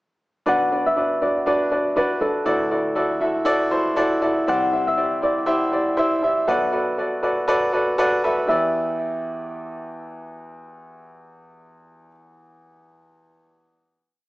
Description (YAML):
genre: pop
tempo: 120 BPM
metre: 4/4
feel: swing 56% on 16ths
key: E minor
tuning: A4 = 438 Hz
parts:
  - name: concert harp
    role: melody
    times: 0.5-12.1 s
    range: A4 to F#5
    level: -23 LUFS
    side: equal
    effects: digital delay
  - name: clear grand piano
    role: accompaniment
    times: 0.5-14.3 s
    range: B1 to B5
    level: -21 LUFS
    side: equal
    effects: none
room: moderate large studio reverb, RT60 0.9 s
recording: small speaker sound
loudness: -19 LUFS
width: side -19 dB against mid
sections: 0.5-8.5 pre-chorus; 8.5-12.5 final chord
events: grand piano fill 7.5-8.5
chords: 0.5 Bm; 2.5 Dadd9; 4.5 Cadd9; 6.5 Bm7; 8.5 Em7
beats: | 0.46 0.96 1.46 1.96 | 2.46 2.96 3.46 3.96 | 4.46 4.96 5.47 5.97 | 6.47 6.97 7.47 7.98 | 8.48 8.98 9.48 9.98 | 10.48 10.98 11.49 11.99